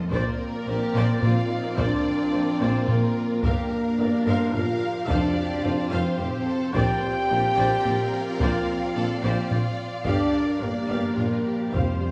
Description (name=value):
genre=cinematic, epic orchestral film score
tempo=108 BPM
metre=3/4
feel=straight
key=Bb major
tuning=A4 = 440 Hz
part: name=warm symphonic string section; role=sustained chords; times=0.0-12.1 s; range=C4 to F5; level=-36 LUFS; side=equal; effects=none
part: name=warm symphonic cello section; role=bass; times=0.0-11.8 s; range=F2 to Bb2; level=-34 LUFS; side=equal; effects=none
part: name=rich symphonic violin section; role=melody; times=0.1-12.1 s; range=Bb4 to G5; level=-39 LUFS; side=equal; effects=none
part: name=warm symphonic viola section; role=accompaniment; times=0.1-12.0 s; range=G4 to F5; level=-36 LUFS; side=equal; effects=none
part: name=mellow French horn section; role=sustained chords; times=0.1-12.1 s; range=Bb3 to G4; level=-29 LUFS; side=equal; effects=none
part: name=warm trombone section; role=sustained chords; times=0.1-12.1 s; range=F3 to D4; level=-37 LUFS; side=equal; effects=none
part: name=warm trumpet section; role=stabs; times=0.1-12.1 s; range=Bb4 to G5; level=-34 LUFS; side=equal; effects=none
part: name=warm symphonic double bass section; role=bass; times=0.1-11.8 s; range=F1 to Bb1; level=-35 LUFS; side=equal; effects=none
part: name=warm tuba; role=bass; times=0.1-11.8 s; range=F1 to Bb1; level=-35 LUFS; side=equal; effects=none
part: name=taiko ensemble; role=drums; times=0.1-12.1 s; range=none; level=-32 LUFS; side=equal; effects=none
part: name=warm symphonic violin section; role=second line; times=0.7-12.1 s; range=Eb4 to D5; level=-39 LUFS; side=equal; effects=none
part: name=timpani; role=percussion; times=5.1-5.9, 11.7-12.1 s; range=F2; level=-34 LUFS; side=equal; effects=none
room=wet scoring stage reverb, RT60 1.6 s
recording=small room ambience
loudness=-24 LUFS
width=mono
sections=0.1-12.1 A section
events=none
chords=0.1 Bbadd9; 3.4 Gm7; 5.1 Fsus2; 6.7 Bbadd9; 10.1 Gm7